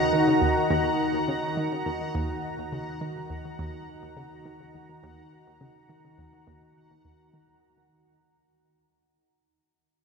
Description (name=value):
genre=ambient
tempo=104 BPM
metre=4/4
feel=straight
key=Eb minor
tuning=A4 = 441 Hz
part: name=lush unison pad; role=sustained chords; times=0.0-7.6 s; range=Eb3 to A#5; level=-26 LUFS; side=equal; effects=chorus
part: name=analog pluck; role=riff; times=0.0-7.5 s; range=Eb2 to Eb3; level=-32 LUFS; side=equal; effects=chorus, ping-pong delay
part: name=bubbling stepped-filter texture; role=texture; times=0.0-7.6 s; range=Gb5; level=-36 LUFS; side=right 3 dB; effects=chorus, built-in reverb
room=wet cathedral reverb, RT60 4.8 s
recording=in a vast, echoing space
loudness=-24 LUFS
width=side -5 dB against mid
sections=0.0-7.6 A section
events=fade-out 0.0-7.6; filter sweep on synth arpeggio sound 0.0-7.6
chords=0.0 Ebm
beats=0.12 | 0.70 1.28 1.86 2.43 | 3.01 3.59 4.16 4.74 | 5.32 5.89 6.47 7.05